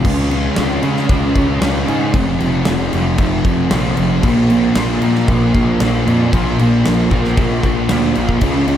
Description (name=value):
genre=rock, shoegaze and dream pop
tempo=115 BPM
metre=4/4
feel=straight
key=unclear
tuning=A4 = 442 Hz
part: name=fuzz guitar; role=riff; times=0.0-8.8 s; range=F2 to Db4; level=-15 LUFS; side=equal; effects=distortion, ensemble chorus
part: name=fuzz picked electric bass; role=bass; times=0.0-8.8 s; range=F1 to Db3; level=-20 LUFS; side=equal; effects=overdrive
part: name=huge arena drum kit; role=drums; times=0.0-8.8 s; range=crash cymbal, kick drum, snare drum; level=-19 LUFS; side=left 1 dB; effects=none
room=moderate huge ambient reverb, RT60 6.4 s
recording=dreamy mix soaked in reverb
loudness=-13 LUFS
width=side -10 dB against mid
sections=0.1-8.8 A section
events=none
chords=0.1 Db5; 2.1 F5; 4.2 Bb5